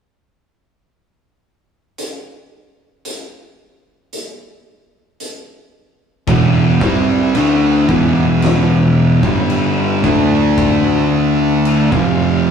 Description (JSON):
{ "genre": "stoner and doom metal", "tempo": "56 BPM", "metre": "4/4", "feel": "straight", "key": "E minor", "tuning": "A4 = 440 Hz", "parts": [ { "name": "oversized low-tuned drum kit", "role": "drums", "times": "2.0-12.2 s", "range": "crash cymbal, hi-hat, kick drum, snare drum", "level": "-21 LUFS", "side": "left 2 dB", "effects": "none" }, { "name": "bright tonewheel organ", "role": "sustained chords", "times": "6.3-12.5 s", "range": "C4 to A5", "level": "-27 LUFS", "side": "equal", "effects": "slow rotary speaker, overdrive" }, { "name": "fuzz guitar", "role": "riff", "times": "6.3-12.5 s", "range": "E2 to D4", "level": "-15 LUFS", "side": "right 5 dB", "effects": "distortion" }, { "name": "thick fuzz guitar", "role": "riff", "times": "6.3-12.5 s", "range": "E2 to D4", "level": "-16 LUFS", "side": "left 5 dB", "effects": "distortion" }, { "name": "fuzz picked electric bass", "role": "bass", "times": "6.3-12.5 s", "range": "E1 to D2", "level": "-21 LUFS", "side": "left 1 dB", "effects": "overdrive" } ], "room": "moderate studio reverb, RT60 0.6 s", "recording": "rough rehearsal-room recording", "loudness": "-11 LUFS", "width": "side -7 dB against mid", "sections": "2.0-6.3 A section; 6.3-12.5 B section", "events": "none", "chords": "2.0 N.C.; 6.3 Em; 10.0 D5; 11.9 F5" }